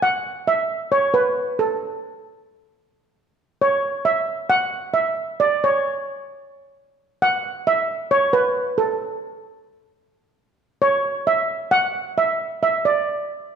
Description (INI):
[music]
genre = calypso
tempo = 133 BPM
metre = 4/4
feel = straight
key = A major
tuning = A4 = 440 Hz
[part]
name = steel pan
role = solo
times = 0.0-13.3 s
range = A4 to F#5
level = -19 LUFS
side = right 2 dB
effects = none
[sound]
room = moderate recital hall reverb, RT60 1.4 s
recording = none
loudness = -18 LUFS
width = side -7 dB against mid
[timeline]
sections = 0.0-13.6 A section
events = none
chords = none